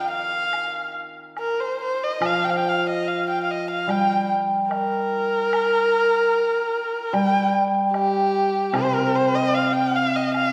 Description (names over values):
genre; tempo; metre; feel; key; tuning
chinese traditional, Chinese chamber ensemble; 74 BPM; 4/4; rubato; unclear; A4 = 440 Hz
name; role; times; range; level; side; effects
dark erhu; melody; 0.0-10.5 s; G4 to G5; -24 LUFS; equal; none
hammered dulcimer; accompaniment; 0.0-10.5 s; C3 to G3; -26 LUFS; equal; none
woodblock; percussion; 0.5-10.5 s; none; -36 LUFS; equal; none
room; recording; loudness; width
wet scoring stage reverb, RT60 2.0 s; heard from further back in the room; -22 LUFS; mono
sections
0.0-10.5 A section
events
none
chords
none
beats
0.53 1.38 | 2.22 3.06 3.89 4.71 | 5.53 6.34 7.13 7.94 | 8.74 9.55 10.35